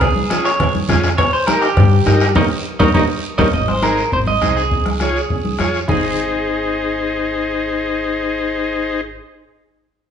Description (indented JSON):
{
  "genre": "latin, cumbia",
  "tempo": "204 BPM",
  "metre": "4/4",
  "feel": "straight",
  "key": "Ab major",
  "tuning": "A4 = 440 Hz",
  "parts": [
    { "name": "electric guitar at the edge of break-up", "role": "melody", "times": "0.0-9.2 s", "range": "G4 to Eb5", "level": "-19 LUFS", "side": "right 2 dB", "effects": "spring reverb" },
    { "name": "upright bass", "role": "bass", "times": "0.0-9.2 s", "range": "Ab1 to G2", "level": "-20 LUFS", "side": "left 1 dB", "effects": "none" },
    { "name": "bombo", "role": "percussion", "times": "0.0-6.0 s", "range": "none", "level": "-21 LUFS", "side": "left 1 dB", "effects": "none" },
    { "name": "congas", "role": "percussion", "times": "0.0-6.0 s", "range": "none", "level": "-23 LUFS", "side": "right 1 dB", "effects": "none" },
    { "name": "cowbell and timbales", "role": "percussion", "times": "0.0-3.5 s", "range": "none", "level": "-26 LUFS", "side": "right 5 dB", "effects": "none" },
    { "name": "guiro", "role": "percussion", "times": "0.0-6.0 s", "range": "none", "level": "-31 LUFS", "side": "right 5 dB", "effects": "none" },
    { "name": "combo organ", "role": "accompaniment", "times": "0.3-9.0 s", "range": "Db4 to Db5", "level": "-20 LUFS", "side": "left 3 dB", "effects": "none" }
  ],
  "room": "wet large studio reverb, RT60 1.2 s",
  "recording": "band playing live in one room, nothing above 10.8 kHz",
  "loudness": "-14 LUFS",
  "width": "side -8 dB against mid",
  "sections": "0.0-3.5 A section; 3.5-5.9 B section; 5.9-8.2 C section",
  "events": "drum fill 2.4-3.5; band accent 2.4-3.5",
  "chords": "0.0 Db; 1.2 Eb7; 3.5 Ab; 4.7 Db; 5.9 Ab",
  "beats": "| 0.01 0.30 0.60 0.89 | 1.18 1.48 1.77 2.06 | 2.36 2.65 2.94 3.24 | 3.53 3.83 4.12 4.41 | 4.71 5.00 5.30 5.59 | 5.89 6.18 6.48 6.77 | 7.07 7.36 7.66 7.95"
}